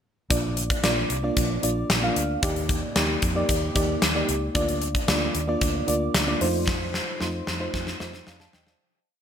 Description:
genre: 1980s-style pop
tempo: 113 BPM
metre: 4/4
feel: straight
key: Bb major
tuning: A4 = 440 Hz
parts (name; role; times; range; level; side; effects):
- mellow FM electric piano; accompaniment; 0.3-8.9 s; A3 to A5; -26 LUFS; equal; chorus
- vintage muted fingered electric bass; bass; 0.3-8.7 s; Bb1 to F2; -30 LUFS; equal; none
- gated 80s drum kit; drums; 0.3-8.8 s; hi-hat, kick drum, snare drum; -25 LUFS; equal; gated reverb
room: moderate lush hall reverb, RT60 2.2 s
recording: bright 1980s-style digital production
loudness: -22 LUFS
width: side -8 dB against mid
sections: 0.3-8.8 verse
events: fade-out 6.7-8.8; drum fill 6.7-8.8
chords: 0.3 Bb; 2.4 Ebmaj7; 4.6 Bb/D; 6.4 F7

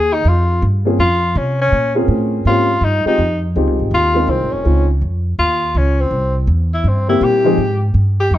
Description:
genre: jazz, small-group swing and bop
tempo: 164 BPM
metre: 4/4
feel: swing 64% on 8ths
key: unclear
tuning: A4 = 440 Hz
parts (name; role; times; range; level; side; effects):
- warm tenor saxophone; melody; 0.0-8.4 s; C4 to Ab4; -17 LUFS; left 1 dB; plate reverb
- upright bass; bass; 0.0-8.4 s; F1 to C3; -16 LUFS; equal; none
- warm upright piano; accompaniment; 0.9-4.9, 7.1-7.6 s; F3 to Bb4; -17 LUFS; left 1 dB; none
room: light reverb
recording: dark, warm production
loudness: -13 LUFS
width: side -13 dB against mid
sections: 0.0-8.4 A section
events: none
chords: 0.0 Bbm7; 3.2 Fm7; 4.6 Dbmaj7; 6.1 C7; 7.6 N.C.

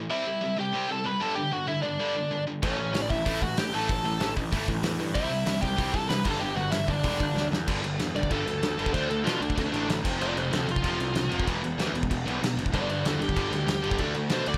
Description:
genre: punk rock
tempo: 190 BPM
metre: 4/4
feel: straight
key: unclear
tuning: A4 = 440 Hz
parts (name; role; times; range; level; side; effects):
- tight distorted guitar; riff; 0.0-14.6 s; E2 to D4; -36 LUFS; equal; distortion
- tight distorted guitar; riff; 0.0-14.6 s; E2 to D4; -36 LUFS; equal; distortion
- bluesy overdriven lead guitar; melody; 0.1-14.6 s; C#4 to B5; -32 LUFS; equal; distortion
- fuzz picked electric bass; bass; 2.6-14.6 s; E1 to B2; -35 LUFS; equal; overdrive
- loose indie drum kit; drums; 2.6-14.6 s; crash cymbal, hi-hat, kick drum, snare drum; -33 LUFS; equal; none
- sludgy distorted guitar; riff; 12.7-14.6 s; G2 to D4; -38 LUFS; equal; none
room: light reverb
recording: none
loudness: -28 LUFS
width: mono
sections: 0.0-7.7 A section; 7.7-14.6 B section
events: drum fill 7.4-7.7; lead electric guitar solo 7.7-14.6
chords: 0.1 C; 1.2 G5; 2.6 A; 5.1 C; 6.3 G5; 8.9 D5; 10.0 F; 11.5 E5; 12.7 G; 14.0 D5

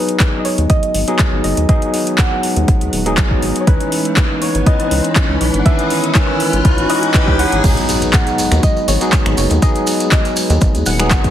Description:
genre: deep house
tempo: 121 BPM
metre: 4/4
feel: swing 53% on 16ths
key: G# minor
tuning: A4 = 440 Hz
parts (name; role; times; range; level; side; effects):
- soft round pluck; melody; 0.0-11.3 s; B4 to F#5; -23 LUFS; equal; wide subtle chorus, cassette tape, ping-pong delay
- warm analog pad; sustained chords; 0.0-11.3 s; G#3 to B4; -28 LUFS; right 2 dB; none
- overdriven tine electric piano; stabs; 0.0-11.3 s; D#3 to B4; -18 LUFS; left 1 dB; wide subtle chorus, sidechain pumping, tape echo
- riser and impact; sound effects; 1.4-9.6 s; none; -24 LUFS; equal; none
- deep house drum kit; drums; 0.1-11.3 s; crash cymbal, finger snaps, handclaps, hi-hat; -20 LUFS; equal; overdrive
- electronic kick drum; drums; 0.2-11.3 s; none; -14 LUFS; equal; overdrive
- rubbery square bass; bass; 0.6-11.3 s; D#1 to D#2; -17 LUFS; equal; sidechain pumping
- maracas; percussion; 7.6-11.3 s; none; -25 LUFS; right 2 dB; none
room: light reverb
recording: heavily compressed radio sound, multiband compression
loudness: -12 LUFS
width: side -11 dB against mid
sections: 0.0-7.6 A section; 7.6-11.3 B section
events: build-up 0.0-7.6; riser 1.4-7.6; drop 7.6-11.3; impact 7.6-9.6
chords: 0.0 G#m7; 3.7 C#m9; 7.6 G#m7

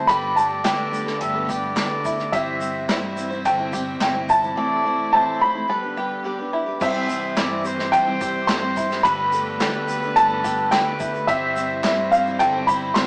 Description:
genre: indie folk with a building arrangement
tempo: 107 BPM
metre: 4/4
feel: straight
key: C major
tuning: A4 = 438 Hz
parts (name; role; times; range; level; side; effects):
- warm upright piano; melody; 0.0-13.1 s; E5 to C6; -23 LUFS; equal; none
- warm trumpet; second line; 0.0-13.1 s; G4 to E5; -31 LUFS; equal; analog delay
- picked steel-string acoustic guitar; accompaniment; 0.0-13.1 s; A2 to C5; -32 LUFS; equal; none
- warm chamber string section; sustained chords; 0.0-13.1 s; C3 to G4; -36 LUFS; equal; none
- bluegrass banjo; arpeggios; 0.0-13.1 s; D4 to B4; -33 LUFS; equal; none
- fingered electric bass; bass; 0.0-13.1 s; G1 to G2; -36 LUFS; equal; none
- unplugged drum kit; drums; 0.1-13.1 s; crash cymbal, kick drum, ride cymbal, snare drum; -31 LUFS; equal; none
- tube shaker; percussion; 0.1-13.1 s; none; -46 LUFS; equal; none
- group handclap; percussion; 0.6-13.1 s; none; -33 LUFS; equal; none
room: moderate stone room reverb, RT60 1.0 s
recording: rough rehearsal-room recording, small speaker sound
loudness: -21 LUFS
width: mono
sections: 0.0-6.8 A section; 6.8-13.1 A section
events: none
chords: 0.1 Gadd9; 2.3 C/G; 4.6 Am; 5.7 G; 6.8 C; 9.0 Gadd9; 11.3 C/G

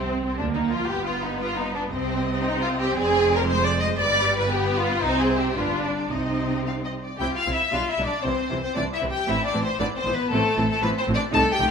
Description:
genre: quick classical-period movement for string orchestra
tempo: 116 BPM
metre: 2/4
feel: straight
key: C minor, C major from 7.2 s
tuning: A4 = 440 Hz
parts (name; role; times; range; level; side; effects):
- rich studio violin section; melody; 0.0-11.7 s; C4 to A5; -28 LUFS; left 3 dB; none
- rich studio violin section; second line; 0.0-11.7 s; A3 to Eb5; -25 LUFS; left 1 dB; none
- warm studio viola section; accompaniment; 0.0-11.7 s; E3 to E4; -28 LUFS; right 2 dB; none
- rich studio cello section; bass; 0.0-11.7 s; F2 to F3; -31 LUFS; right 2 dB; none
- warm studio double bass section; bass; 0.0-11.7 s; F1 to D2; -30 LUFS; right 2 dB; none
room: moderate recital hall reverb, RT60 1.6 s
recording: minimal, uncompressed stereo recording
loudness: -21 LUFS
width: side -6 dB against mid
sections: 0.0-7.2 A section; 7.2-11.7 B section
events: none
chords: 0.0 F5/C; 0.9 G; 1.9 Cm; 3.0 Ddim/F; 4.0 G; 5.0 Cm; 5.6 G7; 6.1 Cm; 7.2 C; 7.7 G/B; 8.2 C; 9.3 Am; 9.8 E; 10.3 Am

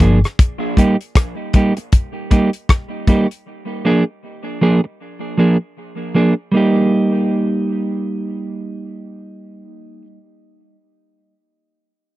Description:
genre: dub reggae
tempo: 78 BPM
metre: 4/4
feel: swing 60% on 16ths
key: unclear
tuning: A4 = 440 Hz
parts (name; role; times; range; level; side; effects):
- mellow electric guitar; accompaniment; 0.0-10.1 s; F3 to Ab4; -16 LUFS; right 2 dB; tape echo
- damped 70s drum kit; drums; 0.0-3.5 s; hi-hat, kick drum, rim click; -12 LUFS; left 1 dB; none
room: little or no reverb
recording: dry, close 1970s-style studio recording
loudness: -14 LUFS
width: side -16 dB against mid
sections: 0.0-6.5 A section; 6.5-9.6 B section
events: none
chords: 0.4 Gm; 3.5 Bb7; 6.5 Eb/G

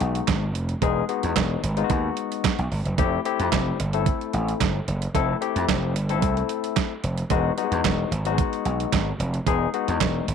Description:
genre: early-eighties boogie funk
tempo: 111 BPM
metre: 4/4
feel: straight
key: unclear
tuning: A4 = 438 Hz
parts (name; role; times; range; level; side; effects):
- barky tine electric piano; accompaniment; 0.0-10.3 s; F#3 to A4; -26 LUFS; left 11 dB; auto-pan
- gritty slap bass; bass; 0.0-10.3 s; E1 to F2; -25 LUFS; right 1 dB; overdrive
- crisp 8-bit digital drum machine; drums; 0.0-10.3 s; handclaps, hi-hat, kick drum, snare drum; -25 LUFS; right 6 dB; overdrive
room: moderate spring reverb, RT60 2.2 s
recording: 1960s-style stereo with parts hard left and right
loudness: -22 LUFS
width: side -7 dB against mid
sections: 0.0-10.3 A section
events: none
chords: 0.0 Emaj9; 3.0 Fmaj9; 7.3 Emaj9

